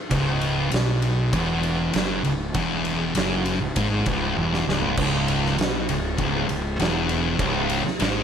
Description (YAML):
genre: stoner and doom metal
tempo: 99 BPM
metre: 4/4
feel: straight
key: C# minor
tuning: A4 = 439 Hz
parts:
  - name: thick fuzz guitar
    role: riff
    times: 0.1-8.2 s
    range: C#2 to B2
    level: -25 LUFS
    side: left 7 dB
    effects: distortion
  - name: thick fuzz guitar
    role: riff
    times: 0.1-8.2 s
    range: C#2 to B2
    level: -26 LUFS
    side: right 8 dB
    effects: distortion
  - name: fuzz fingered electric bass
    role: bass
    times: 0.1-8.2 s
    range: C#1 to B1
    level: -29 LUFS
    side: equal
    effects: overdrive
  - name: oversized low-tuned drum kit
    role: drums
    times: 0.1-8.2 s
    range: crash cymbal, kick drum, ride cymbal, snare drum, toms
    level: -26 LUFS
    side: right 1 dB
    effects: none
room: light reverb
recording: none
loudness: -20 LUFS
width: side -8 dB against mid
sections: 0.0-5.0 A section; 5.0-8.2 B section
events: drum fill 4.4-5.0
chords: 0.0 C#m